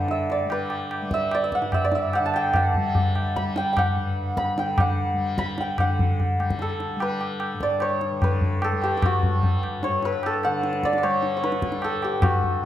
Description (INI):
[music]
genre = indian classical, Hindustani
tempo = 148 BPM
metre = 4/4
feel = straight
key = G raga yaman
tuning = A4 = 438 Hz
[part]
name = santur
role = melody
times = 0.0-12.7 s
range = F#4 to B5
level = -24 LUFS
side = equal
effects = slapback echo
[part]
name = tanpura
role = drone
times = 0.0-12.7 s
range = G2 to G3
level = -31 LUFS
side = left 1 dB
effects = none
[part]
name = tabla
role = percussion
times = 0.1-12.6 s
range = none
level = -25 LUFS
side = left 1 dB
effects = none
[sound]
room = wet recital hall reverb, RT60 1.4 s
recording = none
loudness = -21 LUFS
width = side -12 dB against mid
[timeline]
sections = 0.0-5.8 A section; 5.8-12.7 B section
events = none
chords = none